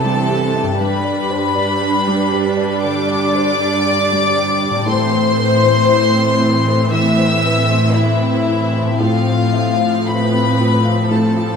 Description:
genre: cinematic, emotional film score for orchestra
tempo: 58 BPM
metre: 4/4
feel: rubato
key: unclear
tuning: A4 = 440 Hz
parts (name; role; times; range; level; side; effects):
- warm symphonic violin section; melody; 0.0-11.6 s; E5 to E6; -20 LUFS; left 3 dB; none
- warm chamber violin section; second line; 0.0-11.6 s; E4 to E5; -20 LUFS; left 4 dB; none
- dark symphonic viola section; accompaniment; 0.0-11.6 s; E3 to D4; -22 LUFS; right 4 dB; none
- felt-muted upright piano; accompaniment; 0.0-11.6 s; G2 to F5; -21 LUFS; right 1 dB; none
- concert harp; arpeggios; 0.0-11.6 s; G2 to D5; -25 LUFS; left 8 dB; none
- rich symphonic cello section; bass; 0.0-11.6 s; G2 to C3; -19 LUFS; equal; none
room: moderate scoring stage reverb, RT60 2.0 s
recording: minimal, uncompressed stereo recording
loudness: -13 LUFS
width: side -6 dB against mid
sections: 0.0-11.6 A section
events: none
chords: 0.0 C; 0.8 G; 4.9 Am; 9.0 F/A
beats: | 0.80 1.81 2.83 3.86 | 4.88 5.90 6.92 7.95 | 9.00 10.07 11.11

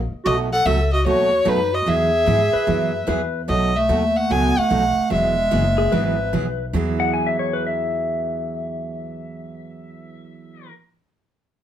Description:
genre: country, western swing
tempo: 148 BPM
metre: 4/4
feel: swing 67% on 8ths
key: E major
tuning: A4 = 440 Hz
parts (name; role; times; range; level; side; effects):
- upright bass; bass; 0.0-10.6 s; E1 to G#2; -25 LUFS; left 1 dB; none
- breathy clarinet; second line; 0.2-6.3 s; F#3 to A4; -24 LUFS; right 3 dB; none
- clear fiddle; melody; 0.3-6.3 s; B4 to G#5; -20 LUFS; left 1 dB; plate reverb
- picked steel-string acoustic guitar; accompaniment; 0.3-10.7 s; B2 to G#4; -25 LUFS; right 4 dB; none
- pedal steel guitar; second line; 2.5-10.7 s; G#4 to G#5; -25 LUFS; left 6 dB; none
room: moderate studio reverb, RT60 0.5 s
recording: none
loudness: -17 LUFS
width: side -10 dB against mid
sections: 0.0-3.5 A section; 3.5-6.7 B section; 6.7-10.0 C section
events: none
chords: 0.3 B7; 1.9 Eadd9; 3.5 B7; 5.1 Eadd9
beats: | 0.26 0.66 1.07 1.47 | 1.88 2.28 2.69 3.09 | 3.50 3.90 4.30 4.71 | 5.12 5.52 5.93 6.33 | 6.74 7.14 7.55 7.95 | 8.36 8.76 9.17 9.57

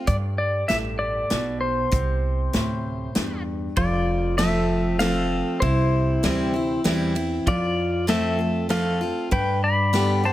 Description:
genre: honky-tonk and classic country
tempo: 97 BPM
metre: 3/4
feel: straight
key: C major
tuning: A4 = 441 Hz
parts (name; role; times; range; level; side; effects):
- picked steel-string acoustic guitar; accompaniment; 0.0-10.3 s; F2 to G4; -25 LUFS; equal; none
- pedal steel guitar; melody; 0.1-10.3 s; E4 to B5; -25 LUFS; left 2 dB; none
- upright bass; bass; 0.1-10.3 s; F1 to G2; -27 LUFS; right 1 dB; none
- natural country drum kit; drums; 0.1-10.1 s; hi-hat, kick drum, ride cymbal, snare drum; -27 LUFS; equal; none
room: light reverb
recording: none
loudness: -20 LUFS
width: side -14 dB against mid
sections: 0.0-3.8 A section; 3.8-10.3 B section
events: none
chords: 0.1 G; 1.9 C; 3.8 F; 5.6 C; 7.5 F; 9.3 G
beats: | 0.08 0.69 1.31 | 1.93 2.54 3.16 | 3.77 4.39 5.00 | 5.62 6.24 6.85 | 7.47 8.09 8.70 | 9.32 9.94

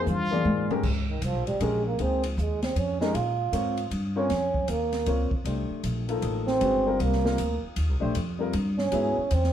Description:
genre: modal jazz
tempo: 156 BPM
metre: 3/4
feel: swing 64% on 8ths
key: Bb dorian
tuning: A4 = 441 Hz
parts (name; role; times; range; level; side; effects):
- trumpet with plunger mute; melody; 0.0-0.7 s; F4; -30 LUFS; left 1 dB; none
- trombone with bucket mute; second line; 0.0-9.5 s; Eb3 to F4; -27 LUFS; right 3 dB; none
- warm upright piano; accompaniment; 0.0-9.1 s; F3 to D5; -30 LUFS; left 5 dB; none
- upright bass; bass; 0.0-9.5 s; G1 to Bb2; -28 LUFS; equal; none
- open jazz drum kit; drums; 0.1-9.5 s; crash cymbal, hi-hat, kick drum, ride cymbal, snare drum, toms; -34 LUFS; left 1 dB; none
room: wet studio reverb, RT60 0.8 s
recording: heard from further back in the room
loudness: -24 LUFS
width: side -10 dB against mid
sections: 0.8-9.5 A section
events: drum fill 0.1-0.8; trombone solo 0.8-9.5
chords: 0.0 Fm11; 0.8 Bbm9; 5.5 Cm9; 8.9 Ab7alt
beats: 0.07 0.45 | 0.83 1.22 1.60 | 1.99 2.37 2.76 | 3.14 3.53 3.91 | 4.30 4.68 5.07 | 5.45 5.84 6.22 | 6.61 6.99 7.38 | 7.76 8.15 8.54 | 8.92 9.31

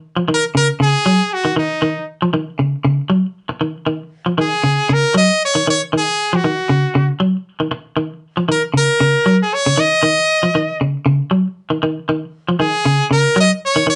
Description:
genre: afrobeat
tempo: 117 BPM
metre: 4/4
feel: swing 54% on 16ths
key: Eb minor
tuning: A4 = 444 Hz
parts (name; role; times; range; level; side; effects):
- clean electric guitar; arpeggios; 0.2-14.0 s; Db3 to Gb3; -18 LUFS; equal; none
- brilliant trumpet; melody; 0.3-14.0 s; Eb4 to Eb5; -18 LUFS; equal; none
room: moderate studio ambience, RT60 0.5 s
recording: band playing live in one room, nothing above 10.8 kHz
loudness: -17 LUFS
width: mono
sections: 0.0-14.0 A section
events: none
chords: 0.0 Ebm7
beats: 0.29 0.80 1.31 | 1.82 2.34 2.85 3.36 | 3.88 4.39 4.90 5.42 | 5.93 6.44 6.95 7.47 | 7.98 8.49 9.01 9.52 | 10.03 10.54 11.06 11.57 | 12.08 12.60 13.11 13.62

